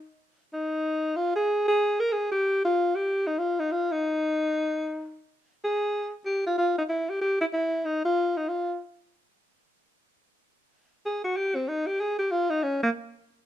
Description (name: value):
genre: jazz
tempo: 188 BPM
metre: 4/4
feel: swing 64% on 8ths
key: unclear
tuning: A4 = 439 Hz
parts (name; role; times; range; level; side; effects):
- breathy alto saxophone; solo; 0.0-8.8, 11.1-12.9 s; Bb3 to Bb4; -24 LUFS; equal; none
room: light reverb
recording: minimal, uncompressed stereo recording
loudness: -25 LUFS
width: side -12 dB against mid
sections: 0.0-10.7 A section; 10.7-13.5 B section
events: alto saxophone solo 10.7-13.5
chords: none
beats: 0.19 | 0.51 0.83 1.15 1.47 | 1.78 2.10 2.42 2.74 | 3.06 3.38 3.69 4.01 | 4.33 4.65 4.96 5.28 | 5.60 5.92 6.24 6.56 | 6.88 7.19 7.51 7.83 | 8.15 8.47 8.79 9.10 | 9.42 9.74 10.06 10.38 | 10.70 11.02 11.33 11.65 | 11.97 12.29 12.61